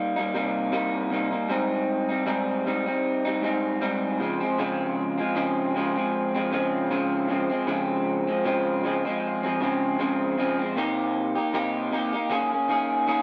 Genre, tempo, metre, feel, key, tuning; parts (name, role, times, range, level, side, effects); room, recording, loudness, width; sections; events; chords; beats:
indie pop; 78 BPM; 4/4; swing 55% on 16ths; A4 = 442 Hz
electric guitar through a small old amp; solo; 0.0-13.2 s; Ab2 to Ab4; -26 LUFS; equal; lush chorus, warbly pitch drift
moderate spring reverb, RT60 1.6 s; -26 LUFS; mono
0.0-13.2 A section
0.0 Cm7; 1.5 Abmaj7; 4.2 Dbmaj7; 10.8 Cm7; 12.3 Eb7sus4
0.73 | 1.50 2.27 3.04 3.82 | 4.59 5.36 6.13 6.90 | 7.68 8.45 9.22 9.99 | 10.76 11.53 12.30 13.07